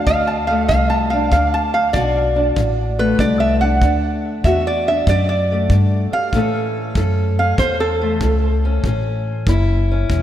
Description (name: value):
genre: acoustic country blues, solo or duo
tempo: 96 BPM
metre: 4/4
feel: swing 67% on 8ths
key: D major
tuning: A4 = 440 Hz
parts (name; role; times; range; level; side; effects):
- lap resonator guitar; melody; 0.0-9.0 s; A4 to A5; -19 LUFS; right 1 dB; diffuse ambient delay
- fingerpicked steel-string acoustic guitar; accompaniment; 0.0-10.2 s; D2 to A4; -21 LUFS; left 2 dB; none
- upright bass; bass; 0.0-10.2 s; E1 to A2; -19 LUFS; equal; none
- kick drum; drums; 0.1-10.2 s; none; -21 LUFS; equal; none
room: moderate lush hall reverb, RT60 2.2 s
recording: dreamy mix soaked in reverb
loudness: -15 LUFS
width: side -11 dB against mid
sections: 0.0-10.2 A section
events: resonator guitar played with a steel bar solo 0.0-10.2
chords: 0.0 D; 6.3 A